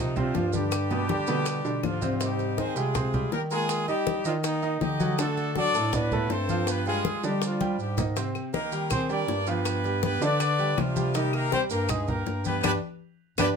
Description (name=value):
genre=latin, salsa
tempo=161 BPM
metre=4/4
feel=straight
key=unclear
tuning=A4 = 440 Hz
part: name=bright horn section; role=melody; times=0.0-13.5 s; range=Eb3 to Eb5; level=-29 LUFS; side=left 2 dB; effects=none
part: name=clear grand piano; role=accompaniment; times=0.0-13.5 s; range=B2 to Eb6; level=-30 LUFS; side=right 3 dB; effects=none
part: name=mellow bass clarinet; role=bass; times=0.0-13.5 s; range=G2 to G3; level=-30 LUFS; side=equal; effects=none
part: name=congas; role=percussion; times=0.2-13.5 s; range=none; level=-33 LUFS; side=left 3 dB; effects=none
part: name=maracas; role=percussion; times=0.2-13.5 s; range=none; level=-39 LUFS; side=right 9 dB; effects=none
part: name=bongos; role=percussion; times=0.3-13.5 s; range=none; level=-34 LUFS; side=left 10 dB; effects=none
part: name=claves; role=percussion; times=0.7-2.0, 8.4-13.5 s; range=none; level=-38 LUFS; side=left 5 dB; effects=none
room=light reverb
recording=none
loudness=-24 LUFS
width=side -6 dB against mid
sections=0.0-2.2 A section; 2.2-13.6 B section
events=drum fill 7.6-8.2, 13.0-13.6; band accent 12.6-13.6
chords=0.0 Fsus2; 0.7 G; 2.2 Abmaj7; 3.7 Ebsus2; 5.2 D7; 6.7 G5; 8.2 Abmaj7; 9.7 G7; 11.1 Cm7; 12.6 G